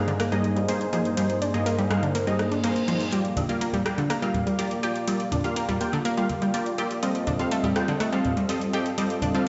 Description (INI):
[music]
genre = progressive house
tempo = 123 BPM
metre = 4/4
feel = straight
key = G minor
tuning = A4 = 440 Hz
[part]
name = warm analog pad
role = sustained chords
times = 0.0-9.5 s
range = G2 to F5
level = -33 LUFS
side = equal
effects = chorus
[part]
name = supersaw stab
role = stabs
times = 0.0-9.5 s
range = G2 to G5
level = -30 LUFS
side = equal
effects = low-pass filter, dub echo
[part]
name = analog pluck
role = arpeggios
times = 0.1-9.3 s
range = D3 to G4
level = -30 LUFS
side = equal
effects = chorus, dub echo
[part]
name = house drum kit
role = drums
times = 0.1-9.4 s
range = hi-hat, rim click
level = -38 LUFS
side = equal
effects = none
[part]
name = reverse cymbal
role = sound effects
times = 2.4-3.1 s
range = none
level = -40 LUFS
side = equal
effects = none
[part]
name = woodblock and congas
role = percussion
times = 3.1-9.4 s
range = none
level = -34 LUFS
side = equal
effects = none
[sound]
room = moderate digital room reverb, RT60 1.2 s, digital ambience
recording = played on a big sound system in a bare room, stone room reverb, nothing above 7.8 kHz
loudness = -25 LUFS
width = mono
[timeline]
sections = 0.0-9.5 A section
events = filter sweep on synth pluck 0.0-9.5; reverse cymbal 2.4-3.1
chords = 0.0 Abadd9/G; 3.1 Gm7; 7.0 F7